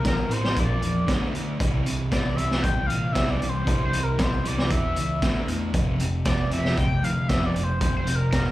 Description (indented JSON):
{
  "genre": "indie rock",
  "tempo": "116 BPM",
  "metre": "4/4",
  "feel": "straight",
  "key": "C mixolydian",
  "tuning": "A4 = 438 Hz",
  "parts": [
    { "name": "sync lead", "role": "melody", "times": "0.0-8.5 s", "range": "Bb4 to G5", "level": "-30 LUFS", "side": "equal", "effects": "chorus, slapback echo, digital delay" },
    { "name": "thick fuzz guitar", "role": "riff", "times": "0.0-8.5 s", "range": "F2 to E4", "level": "-28 LUFS", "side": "equal", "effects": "distortion, slapback echo" },
    { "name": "growling picked electric bass", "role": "bass", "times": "0.0-8.5 s", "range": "E1 to Bb2", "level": "-28 LUFS", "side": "equal", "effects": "overdrive" },
    { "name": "raw garage drum kit", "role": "drums", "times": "0.0-8.4 s", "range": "hi-hat, kick drum, snare drum", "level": "-25 LUFS", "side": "equal", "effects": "none" }
  ],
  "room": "small room ambience",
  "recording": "live gig heard through the venue's PA, club reverb",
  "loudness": "-21 LUFS",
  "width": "side -16 dB against mid",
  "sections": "0.0-8.5 A section",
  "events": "none",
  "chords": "0.0 C7; 0.6 Bb5; 1.1 D5; 1.6 C; 4.7 E5; 5.2 D5; 5.7 F5"
}